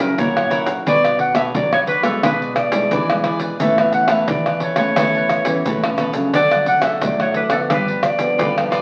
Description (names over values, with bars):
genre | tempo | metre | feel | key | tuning
samba and choro | 88 BPM | 4/4 | straight | unclear | A4 = 441 Hz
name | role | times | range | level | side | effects
warm clarinet | melody | 0.0-8.7 s | A4 to F#5 | -21 LUFS | equal | none
nylon-string guitar | accompaniment | 0.0-8.8 s | G2 to C#5 | -27 LUFS | equal | none
nylon-string guitar | bass | 0.0-8.8 s | G2 to B3 | -27 LUFS | equal | none
cavaquinho | accompaniment | 0.2-8.8 s | D4 to A5 | -29 LUFS | equal | none
egg shaker, surdo, pandeiro and tamborim | percussion | 0.2-8.8 s | none | -23 LUFS | equal | none
room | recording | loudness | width
wet club reverb, RT60 0.9 s | very old 78 rpm record, vinyl crackle | -18 LUFS | mono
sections
0.0-8.8 A section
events
none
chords
0.0 F#7/A#; 0.9 Bmadd9; 2.2 E7/B; 3.6 Aadd9; 6.3 D; 7.7 G7